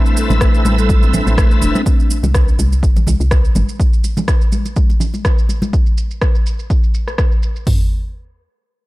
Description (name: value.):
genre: afro house.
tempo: 124 BPM.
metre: 4/4.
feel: swing 55% on 16ths.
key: unclear.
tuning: A4 = 440 Hz.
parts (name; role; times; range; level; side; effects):
bright tonewheel organ; stabs; 0.0-1.8 s; C4 to E5; -22 LUFS; right 2 dB; overdrive, chorus vibrato, slow rotary speaker, sidechain pumping, tape echo.
marimba with soft mallets; arpeggios; 0.1-1.8 s; G3 to A4; -21 LUFS; left 1 dB; sidechain pumping, tape echo.
electronic shaker and rim click; drums; 0.1-7.6 s; none; -25 LUFS; equal; overdrive, low-pass filter on perc, low-pass filter on hats, low-pass filter on toms, low-pass filter on snare, low-pass filter on room.
congas; percussion; 0.2-5.7 s; none; -22 LUFS; equal; none.
woody FM bass; bass; 0.3-3.6 s; E1 to C2; -16 LUFS; equal; sidechain pumping.
deep house drum kit; drums; 0.4-7.8 s; hi-hat, kick drum, toms; -14 LUFS; equal; none.
room: digital ambience.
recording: none.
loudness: -12 LUFS.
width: side -19 dB against mid.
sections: 0.0-7.7 A section; 7.7-8.9 B section.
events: filter sweep on drum 0.0-7.7.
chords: 0.0 Amadd9; 1.9 C5; 3.8 N.C..